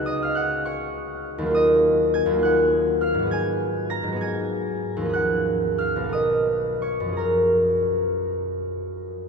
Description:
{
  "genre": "classical, solo harp piece",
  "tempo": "55-69 BPM (dotted quarters)",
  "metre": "6/8",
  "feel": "rubato",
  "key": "F# major",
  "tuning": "A4 = 440 Hz",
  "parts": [
    { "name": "concert harp", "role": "solo", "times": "0.0-9.3 s", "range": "B1 to A#6", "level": "-20 LUFS", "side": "equal", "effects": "none" }
  ],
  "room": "wet cathedral reverb, RT60 5.6 s",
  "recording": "minimal, uncompressed stereo recording",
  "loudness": "-20 LUFS",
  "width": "side -5 dB against mid",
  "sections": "0.0-9.3 A section",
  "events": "none",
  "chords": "0.0 C#9sus4; 1.6 D#madd9; 3.3 G#m7; 5.1 D#m11; 7.2 F#maj9"
}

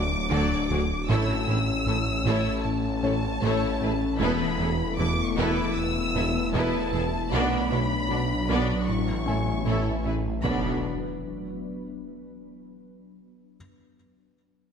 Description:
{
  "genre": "cinematic, hybrid orchestral and electronic film score",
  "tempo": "77 BPM",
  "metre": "4/4",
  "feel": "straight",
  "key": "B minor",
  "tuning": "A4 = 440 Hz",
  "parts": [
    { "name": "warm symphonic violin section", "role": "melody", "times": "0.0-10.9 s", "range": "A5 to E6", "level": "-32 LUFS", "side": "left 1 dB", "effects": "none" },
    { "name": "glassy FM pad", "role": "sustained chords", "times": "0.0-10.9 s", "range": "E3 to E5", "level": "-33 LUFS", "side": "left 1 dB", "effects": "ensemble chorus, built-in reverb" },
    { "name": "mellow French horn section", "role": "sustained chords", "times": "0.0-10.8 s", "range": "E3 to E4", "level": "-33 LUFS", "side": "left 4 dB", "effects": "none" },
    { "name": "harp-like synth pluck", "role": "arpeggios", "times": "0.0-10.3 s", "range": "D3 to D4", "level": "-37 LUFS", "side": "left 4 dB", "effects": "none" },
    { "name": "smooth synth bass", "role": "riff", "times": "0.0-10.3 s", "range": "D2 to B2", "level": "-31 LUFS", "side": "right 2 dB", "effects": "none" },
    { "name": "snarling distorted saw bass", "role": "bass", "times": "0.0-10.9 s", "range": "D1 to B1", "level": "-33 LUFS", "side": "equal", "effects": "distortion" },
    { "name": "warm tuba", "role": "bass", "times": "0.0-10.8 s", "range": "E1 to D2", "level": "-35 LUFS", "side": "right 4 dB", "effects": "none" },
    { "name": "felt-muted upright piano", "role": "texture", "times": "0.0-10.5 s", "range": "B4 to G#5", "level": "-39 LUFS", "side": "left 2 dB", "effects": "none" },
    { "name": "rich symphonic violin section", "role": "second line", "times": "0.3-10.9 s", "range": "E4 to D5", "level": "-34 LUFS", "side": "left 3 dB", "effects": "none" },
    { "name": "rich symphonic viola section", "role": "accompaniment", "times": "0.3-10.9 s", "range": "F#3 to F#4", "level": "-32 LUFS", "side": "right 1 dB", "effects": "none" },
    { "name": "rich symphonic double bass section", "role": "bass", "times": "0.3-10.9 s", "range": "E1 to D2", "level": "-34 LUFS", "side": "right 4 dB", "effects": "none" },
    { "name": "warm symphonic cello section", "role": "bass", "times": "0.3-10.9 s", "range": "E2 to D3", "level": "-36 LUFS", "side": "right 3 dB", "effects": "none" },
    { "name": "impact", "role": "sound effects", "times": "10.4-13.6 s", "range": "none", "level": "-36 LUFS", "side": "equal", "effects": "none" }
  ],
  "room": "moderate scoring stage reverb, RT60 1.5 s",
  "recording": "none",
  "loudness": "-23 LUFS",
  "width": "side -7 dB against mid",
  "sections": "0.0-10.4 A section; 10.4-13.6 B section",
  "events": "impact 10.4-13.6",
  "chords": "0.0 D; 1.1 A; 4.2 Esus4; 7.3 Bm; 8.9 A; 10.4 Bm"
}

